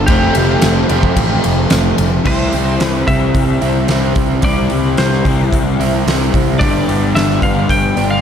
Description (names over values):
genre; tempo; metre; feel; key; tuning
rock, shoegaze and dream pop; 110 BPM; 4/4; straight; unclear; A4 = 444 Hz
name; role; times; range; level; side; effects
twelve-string electric guitar; melody; 0.0-8.2 s; G4 to G5; -21 LUFS; equal; spring reverb, slapback echo
overdriven electric guitar; riff; 0.0-8.2 s; F2 to E4; -19 LUFS; right 11 dB; reverse reverb
overdriven semi-hollow guitar; riff; 0.0-8.2 s; F2 to E4; -18 LUFS; left 11 dB; ensemble chorus
fuzz picked electric bass; bass; 0.0-8.2 s; F1 to C2; -17 LUFS; equal; overdrive
huge arena drum kit; drums; 0.1-8.1 s; crash cymbal, hi-hat, kick drum, ride cymbal, snare drum; -17 LUFS; equal; none
tambourine; percussion; 0.6-1.8 s; none; -30 LUFS; left 11 dB; none
room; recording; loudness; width
little or no reverb; dark, warm production; -11 LUFS; side -8 dB against mid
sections
0.0-2.3 A section; 2.3-8.2 B section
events
none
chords
0.1 Fadd9; 2.3 C; 6.6 G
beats
| 0.09 0.63 1.17 1.72 | 2.26 2.80 3.35 3.89 | 4.44 4.98 5.52 6.07 | 6.61 7.15 7.70